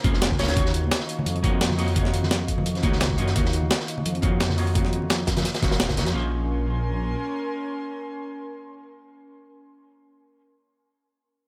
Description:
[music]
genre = liquid drum and bass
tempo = 172 BPM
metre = 4/4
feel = straight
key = Bb minor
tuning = A4 = 445 Hz
[part]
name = vintage hollow-body jazz guitar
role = accompaniment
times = 0.0-10.4 s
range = Bb3 to Db5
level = -34 LUFS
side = equal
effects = low-pass filter, tape echo
[part]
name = airy breathy pad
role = sustained chords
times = 0.0-9.7 s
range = Eb3 to Db6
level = -36 LUFS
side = equal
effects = chorus
[part]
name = dark detuned saw bass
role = bass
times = 0.0-7.2 s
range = Eb1 to Gb2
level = -28 LUFS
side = equal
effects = none
[part]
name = breakbeat sampler-style drum kit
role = drums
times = 0.0-6.1 s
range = hi-hat, snare drum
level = -29 LUFS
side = equal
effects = none
[part]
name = crunchy breakbeat drum kit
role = drums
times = 0.0-6.1 s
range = hi-hat, snare drum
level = -32 LUFS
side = equal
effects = high-pass filter on hats, high-pass filter on snare, high-pass filter on room
[part]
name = electronic kick drum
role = drums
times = 0.0-6.0 s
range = none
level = -28 LUFS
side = equal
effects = none
[part]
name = congas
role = percussion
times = 0.0-6.0 s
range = none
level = -34 LUFS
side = equal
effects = none
[part]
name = warm velvety synth lead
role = melody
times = 0.4-0.7 s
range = Db5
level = -37 LUFS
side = equal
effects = chorus, tremolo, digital delay
[sound]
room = little or no reverb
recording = none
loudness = -24 LUFS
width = mono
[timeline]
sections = 0.0-6.1 A section; 6.1-8.9 B section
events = filter sweep on hollow-body jazz guitar 0.0-6.1; filter sweep on analog synth pad 0.0-6.1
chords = 0.4 Ebm9; 6.1 Bbm9

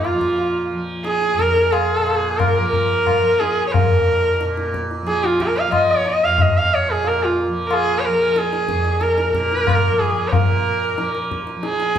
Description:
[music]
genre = indian classical, Hindustani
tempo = 91 BPM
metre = 5/4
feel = straight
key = unclear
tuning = A4 = 440 Hz
[part]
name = warm sarangi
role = melody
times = 0.0-12.0 s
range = F4 to F5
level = -18 LUFS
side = right 1 dB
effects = none
[part]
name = tanpura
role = drone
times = 0.0-12.0 s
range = F2 to F3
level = -24 LUFS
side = right 1 dB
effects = none
[part]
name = tabla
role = percussion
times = 0.0-12.0 s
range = none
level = -22 LUFS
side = left 2 dB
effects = none
[sound]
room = wet large studio reverb, RT60 1.0 s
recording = band playing live in one room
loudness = -16 LUFS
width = side -9 dB against mid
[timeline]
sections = 0.0-10.3 A section; 10.3-12.0 B section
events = speeding up 0.0-12.0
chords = none

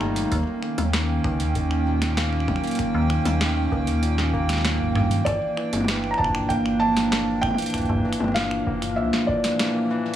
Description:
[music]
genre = IDM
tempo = 97 BPM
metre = 4/4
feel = straight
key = unclear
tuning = A4 = 440 Hz
[part]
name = hollow soft pad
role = sustained chords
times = 0.0-10.2 s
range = C3 to G5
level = -27 LUFS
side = right 3 dB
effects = chorus
[part]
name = overdriven tine electric piano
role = arpeggios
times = 0.0-10.2 s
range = A#2 to Eb4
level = -27 LUFS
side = left 2 dB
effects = digital delay
[part]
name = metallic FM bass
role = bass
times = 0.0-9.1 s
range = F1 to G2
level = -26 LUFS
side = equal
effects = tube saturation
[part]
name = electro analog drum machine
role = drums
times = 0.0-10.2 s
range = finger snaps, hi-hat, snare drum, toms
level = -28 LUFS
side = equal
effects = digital delay
[part]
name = electronic kick drum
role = drums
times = 0.3-9.4 s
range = none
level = -30 LUFS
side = equal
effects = none
[part]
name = felt-muted upright piano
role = melody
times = 5.2-9.9 s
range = D5 to Bb5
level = -27 LUFS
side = right 1 dB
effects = tape echo
[sound]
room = light reverb, digital ambience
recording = small room ambience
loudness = -20 LUFS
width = side -11 dB against mid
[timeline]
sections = 0.0-10.2 A section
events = none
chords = 0.3 D#7; 5.3 Gm

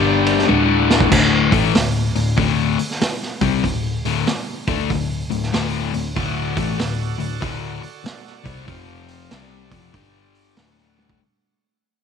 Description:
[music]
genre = blues rock power trio and southern rock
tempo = 95 BPM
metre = 4/4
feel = swing 64% on 8ths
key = D mixolydian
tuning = A4 = 440 Hz
[part]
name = overdriven tonewheel organ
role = sustained chords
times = 0.0-1.1, 6.2-11.2 s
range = C4 to G5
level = -29 LUFS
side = right 11 dB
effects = slow rotary speaker
[part]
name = crunchy overdriven guitar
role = riff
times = 0.0-11.2 s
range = D2 to D4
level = -20 LUFS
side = left 9 dB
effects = none
[part]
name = vintage muted picked electric bass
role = bass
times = 0.0-11.2 s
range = D1 to D2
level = -24 LUFS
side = right 3 dB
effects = none
[part]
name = vintage drum kit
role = drums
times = 0.3-11.2 s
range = crash cymbal, hi-hat, kick drum, ride cymbal, snare drum, toms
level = -21 LUFS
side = right 3 dB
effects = none
[sound]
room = light reverb, studio ambience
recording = 1960s-style stereo with parts hard left and right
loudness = -16 LUFS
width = side -7 dB against mid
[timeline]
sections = 0.0-1.1 A section; 1.1-11.2 A section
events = drum fill 0.5-1.1, 10.9-11.2; fade-out 1.1-11.2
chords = 0.5 D; 8.7 F5; 9.3 D; 9.9 G5; 10.6 D

